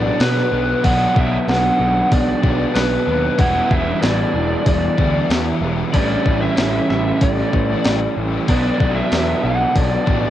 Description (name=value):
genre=rock, shoegaze and dream pop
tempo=94 BPM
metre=4/4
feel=straight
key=B minor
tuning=A4 = 440 Hz
part: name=lead guitar through a small cranked amp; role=melody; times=0.0-10.3 s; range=B4 to F#5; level=-21 LUFS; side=left 1 dB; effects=overdrive, cassette tape, analog delay
part: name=granular cloud pad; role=sustained chords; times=0.0-10.3 s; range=D4 to A5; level=-33 LUFS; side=equal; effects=none
part: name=biting overdriven guitar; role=riff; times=0.0-10.3 s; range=A2 to E4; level=-28 LUFS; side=left 9 dB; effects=wide subtle chorus
part: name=crunchy overdriven guitar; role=riff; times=0.0-10.3 s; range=E2 to B3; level=-26 LUFS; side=left 1 dB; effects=none
part: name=raw garage guitar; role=riff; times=0.0-10.3 s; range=A2 to E4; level=-22 LUFS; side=right 5 dB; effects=overdrive, reverse reverb
part: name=fuzz picked electric bass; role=bass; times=0.0-10.3 s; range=E1 to B2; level=-22 LUFS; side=left 1 dB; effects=overdrive
part: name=clean 12-bit digital drum machine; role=drums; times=0.2-10.2 s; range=hi-hat, kick drum, snare drum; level=-19 LUFS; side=left 1 dB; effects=cassette tape
room=little or no reverb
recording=home recording on cassette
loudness=-15 LUFS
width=side -12 dB against mid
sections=0.0-10.3 A section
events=none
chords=0.0 Bm7; 3.4 Em7; 5.9 A7sus4; 8.5 Bm7